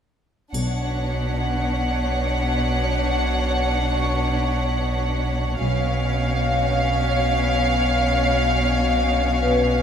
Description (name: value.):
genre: cinematic, suspense film score.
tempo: 71 BPM.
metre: 3/4.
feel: straight.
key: unclear.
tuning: A4 = 441 Hz.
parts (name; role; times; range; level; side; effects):
rich studio violin section; melody; 0.5-9.8 s; E#5 to F#5; -25 LUFS; left 2 dB; none.
rich chamber violin section; second line; 0.5-9.8 s; C#4 to C#5; -26 LUFS; left 1 dB; none.
clear symphonic double bass section; bass; 0.5-1.3, 5.6-6.4 s; B1; -28 LUFS; equal; none.
warm sub bass; drone; 0.5-9.8 s; B1; -25 LUFS; equal; none.
triangle; percussion; 0.5-2.2 s; none; -35 LUFS; left 1 dB; none.
clear chamber cello section; bass; 0.6-9.8 s; B2; -25 LUFS; right 1 dB; none.
vibraphone with hard mallets; texture; 1.4-9.8 s; B4 to C#6; -29 LUFS; right 1 dB; none.
room: moderate stone room reverb, RT60 1.2 s.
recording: none.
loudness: -19 LUFS.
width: side -8 dB against mid.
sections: 0.5-9.8 A section.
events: none.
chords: 0.5 Bmadd9.